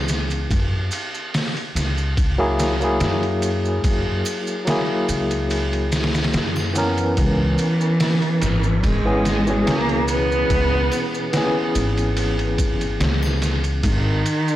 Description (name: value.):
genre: trip hop.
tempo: 72 BPM.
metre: 4/4.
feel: straight.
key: C# dorian.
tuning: A4 = 438 Hz.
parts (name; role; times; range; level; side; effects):
barky tine electric piano; accompaniment; 0.0-13.8 s; B2 to A#4; -23 LUFS; left 1 dB; tremolo, tape echo.
upright bass; bass; 0.0-14.2 s; G#1 to F#2; -23 LUFS; equal; none.
trip hop sampler-style drum kit; drums; 0.1-14.5 s; hi-hat, kick drum, ride cymbal, snare drum; -24 LUFS; equal; overdrive.
maracas and triangle; percussion; 0.1-14.6 s; none; -36 LUFS; right 4 dB; none.
warm cello; melody; 7.2-14.6 s; D#3 to B3; -22 LUFS; right 1 dB; tape echo.
room: light reverb, studio reverb.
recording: blown-out, overdriven recording, overdrive.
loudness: -18 LUFS.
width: side -14 dB against mid.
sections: 0.0-14.6 A section.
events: none.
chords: 0.0 C#m7; 0.5 F#9; 7.2 C#m7; 13.8 G#5.